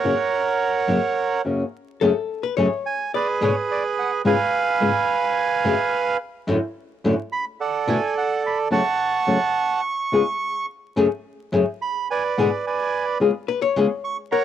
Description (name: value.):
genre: tango.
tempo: 107 BPM.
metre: 4/4.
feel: rubato.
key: F# harmonic minor.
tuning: A4 = 440 Hz.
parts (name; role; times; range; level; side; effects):
bandoneon; melody; 0.0-14.4 s; G#4 to C#6; -21 LUFS; right 4 dB; cassette tape.
flamenco guitar; accompaniment; 0.0-13.9 s; F#2 to G#4; -19 LUFS; left 3 dB; cassette tape.
archtop guitar, miked and amplified; second line; 2.0-3.5, 13.5-14.4 s; A4 to D5; -24 LUFS; left 8 dB; cassette tape.
room: wet booth ambience, RT60 0.2 s.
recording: home recording on cassette, vinyl crackle.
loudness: -20 LUFS.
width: side -10 dB against mid.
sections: 0.0-2.0 A section; 2.0-14.4 B section.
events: none.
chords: 0.0 F#; 2.0 F#madd9; 3.1 G#dim; 4.3 C#7/G#; 5.4 F#madd9; 6.5 Dmaj7/F#; 7.6 Bm7; 8.7 F#m/C#; 9.8 C#7; 11.0 F#madd9; 12.1 G#dim; 13.2 C#7.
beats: 0.32 0.88 1.45 | 2.02 2.58 3.14 3.69 | 4.25 4.81 5.37 5.92 | 6.48 7.04 7.60 8.16 | 8.72 9.28 9.84 10.41 | 10.97 11.54 12.10 12.66 | 13.22 13.77 14.33.